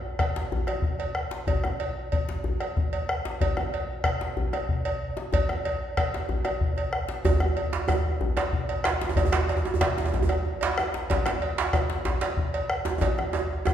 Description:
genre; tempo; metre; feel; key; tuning
west african traditional, West African drum ensemble; 125 BPM (dotted quarters); 12/8; straight; none; none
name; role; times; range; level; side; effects
bombo; percussion; 0.2-13.7 s; none; -28 LUFS; left 2 dB; none
cowbell; percussion; 0.2-13.5 s; none; -32 LUFS; right 2 dB; none
djembe; percussion; 0.4-13.3 s; none; -32 LUFS; left 2 dB; none
djembe; percussion; 7.3-13.7 s; none; -27 LUFS; right 3 dB; none
room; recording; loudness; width
wet recital hall reverb, RT60 1.7 s; recorded in a church or concert hall; -24 LUFS; side -10 dB against mid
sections
0.0-13.7 A section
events
drum fill 13.0-13.7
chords
none

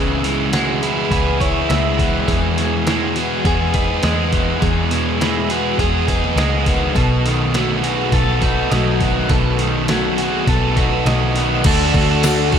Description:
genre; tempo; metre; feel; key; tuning
rock, shoegaze and dream pop; 102 BPM; 4/4; straight; E major; A4 = 440 Hz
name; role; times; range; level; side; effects
clean electric guitar; arpeggios; 0.0-12.6 s; E4 to E5; -26 LUFS; right 7 dB; analog chorus, analog delay
biting overdriven guitar; riff; 0.0-12.6 s; B2 to A4; -21 LUFS; left 10 dB; wide subtle chorus
overdriven electric guitar; riff; 0.0-12.6 s; E2 to G#4; -20 LUFS; right 10 dB; reverse reverb
vintage muted picked electric bass; bass; 0.0-12.6 s; B1 to E2; -21 LUFS; equal; none
detuned 8-bit digital drum machine; drums; 0.2-12.6 s; crash cymbal, hi-hat, kick drum, snare drum; -21 LUFS; equal; overdrive
tambourine; percussion; 12.2-12.4 s; none; -28 LUFS; left 13 dB; none
room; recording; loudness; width
light reverb, digital ambience; none; -15 LUFS; side -8 dB against mid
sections
0.0-11.7 A section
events
kick and snare drop out 11.4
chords
0.0 C#m7; 2.3 Emaj7; 7.0 B7; 11.7 D

